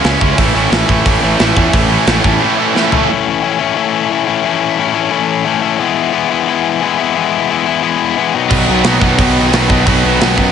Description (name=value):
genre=punk rock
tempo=177 BPM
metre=4/4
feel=straight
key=unclear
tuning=A4 = 441 Hz
part: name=distorted electric guitar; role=riff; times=0.0-10.5 s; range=A2 to E4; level=-14 LUFS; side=left 9 dB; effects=overdrive
part: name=tight distorted guitar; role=riff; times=0.0-3.1, 8.5-10.5 s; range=A2 to C#4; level=-15 LUFS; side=right 14 dB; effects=distortion
part: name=fuzz picked electric bass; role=bass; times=0.0-2.4, 8.5-10.5 s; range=A1 to F#2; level=-16 LUFS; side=right 1 dB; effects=overdrive
part: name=tight metal drum kit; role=drums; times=0.0-3.0, 8.5-10.5 s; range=crash cymbal, hi-hat, kick drum, snare drum, toms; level=-15 LUFS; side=right 1 dB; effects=none
part: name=scooped high-gain guitar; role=riff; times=8.5-10.5 s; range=B2 to B4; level=-19 LUFS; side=equal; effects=distortion
room=light reverb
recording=nothing above 10.6 kHz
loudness=-11 LUFS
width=side -7 dB against mid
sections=0.0-3.1 A section; 3.1-10.5 B section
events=drum fill 2.7-3.1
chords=0.4 A; 5.8 E; 8.3 B